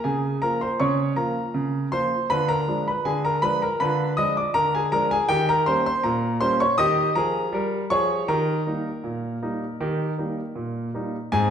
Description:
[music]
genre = ragtime piano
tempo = 80 BPM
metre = 2/4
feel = straight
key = unclear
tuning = A4 = 440 Hz
[part]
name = clear concert grand piano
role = solo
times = 0.0-11.5 s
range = Ab2 to Eb6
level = -21 LUFS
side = equal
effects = none
[sound]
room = wet recital hall reverb, RT60 1.4 s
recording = recorded in a church or concert hall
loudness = -21 LUFS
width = side -8 dB against mid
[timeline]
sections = 0.0-11.3 A section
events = none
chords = 0.0 Bbm/Db; 2.3 Ddim7; 5.3 Eb7; 8.3 Eb

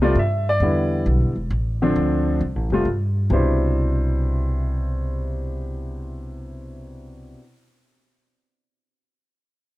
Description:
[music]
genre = jazz piano trio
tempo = 133 BPM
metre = 3/4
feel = swing 67% on 8ths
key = C major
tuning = A4 = 444 Hz
[part]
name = warm grand piano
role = melody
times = 0.0-7.4 s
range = B2 to E5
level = -23 LUFS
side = left 1 dB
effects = none
[part]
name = upright bass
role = bass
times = 0.0-7.3 s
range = E1 to G2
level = -22 LUFS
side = equal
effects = none
[sound]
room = small room ambience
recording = dry, close 1970s-style studio recording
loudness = -19 LUFS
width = side -17 dB against mid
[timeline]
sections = 0.0-3.3 A section; 3.3-6.0 B section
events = none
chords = 0.2 G5; 0.6 Em7; 1.5 Asus4; 2.0 Dm7; 2.9 N.C.; 3.3 Cmaj9

